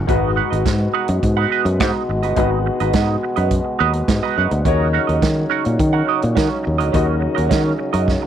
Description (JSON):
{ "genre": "disco", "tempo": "105 BPM", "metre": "4/4", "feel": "straight", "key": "G# minor", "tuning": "A4 = 441 Hz", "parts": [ { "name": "clear grand piano", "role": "accompaniment", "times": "0.0-8.3 s", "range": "D#3 to G#5", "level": "-26 LUFS", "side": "left 14 dB", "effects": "none" }, { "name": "fingered electric bass", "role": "bass", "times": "0.0-8.1 s", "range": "G1 to D#3", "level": "-19 LUFS", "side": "equal", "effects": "none" }, { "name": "clean electric guitar", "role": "accompaniment", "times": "0.1-8.3 s", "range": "C#4 to F#5", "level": "-22 LUFS", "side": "right 15 dB", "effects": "wah" }, { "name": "mellow French horn section", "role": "sustained chords", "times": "0.1-8.3 s", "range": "B2 to F#4", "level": "-23 LUFS", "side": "left 1 dB", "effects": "none" }, { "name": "vintage drum kit", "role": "drums", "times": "0.1-8.2 s", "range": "hi-hat, kick drum, snare drum", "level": "-22 LUFS", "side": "right 2 dB", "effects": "none" } ], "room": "light reverb, studio reverb", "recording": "1960s-style stereo with parts hard left and right", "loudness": "-15 LUFS", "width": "side -10 dB against mid", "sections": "0.1-8.3 A section", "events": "drum fill 8.1", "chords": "0.1 G#m7; 4.7 D#m7" }